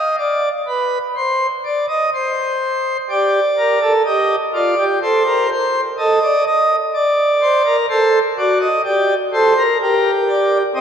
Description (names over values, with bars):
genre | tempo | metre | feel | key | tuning
classical, baroque-style 4-part fugue for pipe organ | 63 BPM | 4/4 | straight | unclear | A4 = 440 Hz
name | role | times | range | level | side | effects
pipe organ, principal chorus | solo | 0.0-10.8 s | C4 to Eb5 | -14 LUFS | equal | none
room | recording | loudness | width
wet church reverb, RT60 3.2 s | dark, warm production | -14 LUFS | side -8 dB against mid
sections
0.0-10.8 A section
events
none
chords
0.0 N.C.; 3.1 Gm; 5.0 Adim; 6.9 D7; 8.8 Gm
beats
0.20 1.17 2.14 | 3.10 4.06 5.02 5.98 | 6.93 7.89 8.85 9.80 | 10.75